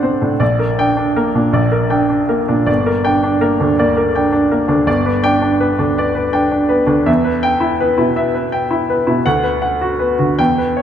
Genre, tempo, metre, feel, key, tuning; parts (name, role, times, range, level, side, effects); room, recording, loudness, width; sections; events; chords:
classical, romantic character piece for solo piano; 108 BPM; 4/4; rubato; G minor, B minor from 4.9 s; A4 = 439 Hz
clear baby grand piano; solo; 0.0-10.8 s; G1 to G5; -13 LUFS; equal
moderate concert hall reverb, RT60 1.9 s; -13 LUFS; side -9 dB against mid
0.0-10.8 A section
0.4 Gm/Bb; 2.7 Gm; 4.9 G; 7.1 Em; 9.3 Bm/D